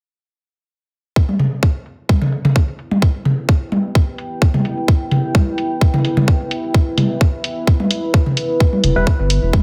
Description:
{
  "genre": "minimal techno",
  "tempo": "129 BPM",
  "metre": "4/4",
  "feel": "swing 54% on 16ths",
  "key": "E minor",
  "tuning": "A4 = 440 Hz",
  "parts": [
    { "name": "electronic kick drum", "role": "drums", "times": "1.2-9.6 s", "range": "none", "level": "-15 LUFS", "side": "equal", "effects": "studio reverb" },
    { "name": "deep dark ambient pad", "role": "texture", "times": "3.4-9.6 s", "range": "E4 to A5", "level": "-26 LUFS", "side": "equal", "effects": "chorus, built-in reverb, sidechain pumping" },
    { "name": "electronic toms", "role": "percussion", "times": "1.3-9.6 s", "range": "none", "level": "-20 LUFS", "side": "equal", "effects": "studio reverb" },
    { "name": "electronic hi-hat", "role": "drums", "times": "1.4-9.4 s", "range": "none", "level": "-26 LUFS", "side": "equal", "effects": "low-pass filter on hats, studio reverb" },
    { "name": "saturated sub bass", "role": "bass", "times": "8.8-9.6 s", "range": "E1 to G1", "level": "-19 LUFS", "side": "equal", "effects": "sidechain pumping" },
    { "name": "percussive organ stab", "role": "stabs", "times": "9.0-9.1 s", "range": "G3 to B4", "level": "-23 LUFS", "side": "equal", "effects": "chorus, vintage 12-bit sampler grit, tape echo" }
  ],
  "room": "little or no reverb",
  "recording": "heavily compressed radio sound",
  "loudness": "-17 LUFS",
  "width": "mono",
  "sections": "1.2-9.6 A section",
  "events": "filter sweep on drum 1.2-9.6",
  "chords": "1.2 Em"
}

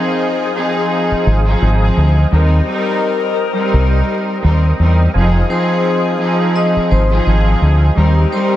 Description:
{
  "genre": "hip hop",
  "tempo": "85 BPM",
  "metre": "4/4",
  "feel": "swing 57% on 16ths",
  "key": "F minor",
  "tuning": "A4 = 440 Hz",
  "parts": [
    { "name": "clear studio string section", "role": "accompaniment", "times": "0.0-8.6 s", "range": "F3 to Bb4", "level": "-17 LUFS", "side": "right 1 dB", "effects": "cassette tape, high-pass filter, low-pass filter" },
    { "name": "percussive tonewheel organ", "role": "sustained chords", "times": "0.0-8.6 s", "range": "C5 to Eb6", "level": "-24 LUFS", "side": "right 1 dB", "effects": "chorus vibrato, slow rotary speaker, high-pass filter, low-pass filter" },
    { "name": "clear saxophone section", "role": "stabs", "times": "0.0-8.6 s", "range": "Eb3 to Bb4", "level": "-22 LUFS", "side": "left 7 dB", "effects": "high-pass filter, low-pass filter, diffuse ambient delay" },
    { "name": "deep dub fingered electric bass", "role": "bass", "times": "1.1-8.2 s", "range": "F1 to E2", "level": "-12 LUFS", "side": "equal", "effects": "none" },
    { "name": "vibraphone with hard mallets", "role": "melody", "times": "5.5-8.6 s", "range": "C5 to Eb6", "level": "-22 LUFS", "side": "left 2 dB", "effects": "high-pass filter, low-pass filter, diffuse ambient delay" }
  ],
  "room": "moderate plate reverb, RT60 3.4 s",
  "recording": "dreamy mix soaked in reverb, vinyl crackle",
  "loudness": "-12 LUFS",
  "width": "side -13 dB against mid",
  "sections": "0.0-8.6 A section",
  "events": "none",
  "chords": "0.0 Fm7; 2.3 Cm7/Eb; 5.1 Fm7; 8.0 Cm7/Eb"
}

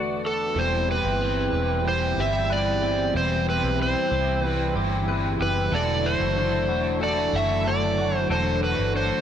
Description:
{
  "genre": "dream pop",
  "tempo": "93 BPM",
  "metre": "4/4",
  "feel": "straight",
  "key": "unclear",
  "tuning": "A4 = 441 Hz",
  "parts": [
    { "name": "overdriven slide guitar", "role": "melody", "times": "0.0-9.2 s", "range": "A4 to E5", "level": "-25 LUFS", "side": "right 1 dB", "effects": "tape echo" },
    { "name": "warm analog pad", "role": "sustained chords", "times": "0.0-9.2 s", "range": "D3 to B4", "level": "-30 LUFS", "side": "equal", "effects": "chorus, tremolo" },
    { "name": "clean electric guitar", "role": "arpeggios", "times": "0.0-9.2 s", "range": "E2 to B4", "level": "-30 LUFS", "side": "left 3 dB", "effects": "ensemble chorus, tape echo" },
    { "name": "vintage muted fingered electric bass", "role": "bass", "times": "0.0-9.1 s", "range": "E1 to C2", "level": "-28 LUFS", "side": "equal", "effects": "none" },
    { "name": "overdriven electric guitar", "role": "accompaniment", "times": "0.5-9.2 s", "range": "E2 to A4", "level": "-30 LUFS", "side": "right 2 dB", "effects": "harmonic tremolo, wide subtle chorus" }
  ],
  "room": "light reverb, digital ambience",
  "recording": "none",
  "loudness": "-21 LUFS",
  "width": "side -9 dB against mid",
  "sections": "0.6-9.2 A section",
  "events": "none",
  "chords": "0.0 Bm7/E; 0.6 Cmaj7/E; 5.7 Dadd9/E"
}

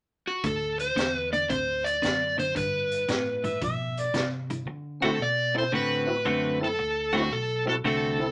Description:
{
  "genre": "electric blues shuffle",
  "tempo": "114 BPM",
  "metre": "4/4",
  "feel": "swing 67% on 8ths",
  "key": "D mixolydian",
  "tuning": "A4 = 439 Hz",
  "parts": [
    { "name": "overdriven slide guitar", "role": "melody", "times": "0.3-8.3 s", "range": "F#4 to D5", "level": "-29 LUFS", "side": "equal", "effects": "none" },
    { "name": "clean electric guitar", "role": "riff", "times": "0.4-8.2 s", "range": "G2 to F#4", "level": "-33 LUFS", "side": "equal", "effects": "none" },
    { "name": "fingered electric bass", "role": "bass", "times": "0.4-8.3 s", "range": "B1 to D3", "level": "-39 LUFS", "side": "equal", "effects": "none" },
    { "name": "raw garage drum kit", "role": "drums", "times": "0.4-4.6 s", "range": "hi-hat, kick drum, snare drum", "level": "-36 LUFS", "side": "equal", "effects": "none" },
    { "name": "clear harmonica", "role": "second line", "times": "3.4-4.3 s", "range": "D5 to E5", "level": "-33 LUFS", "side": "equal", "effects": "overdrive" },
    { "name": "tonewheel organ", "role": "accompaniment", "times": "5.0-8.3 s", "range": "C4 to A4", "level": "-34 LUFS", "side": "equal", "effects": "slow rotary speaker, overdrive, chorus vibrato" }
  ],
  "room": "moderate club reverb, RT60 0.6 s",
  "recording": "nothing above 10.5 kHz",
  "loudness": "-27 LUFS",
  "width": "mono",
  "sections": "0.4-4.7 A section; 4.7-8.3 B section",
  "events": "none",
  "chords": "0.4 D7; 2.6 G7; 4.7 D7"
}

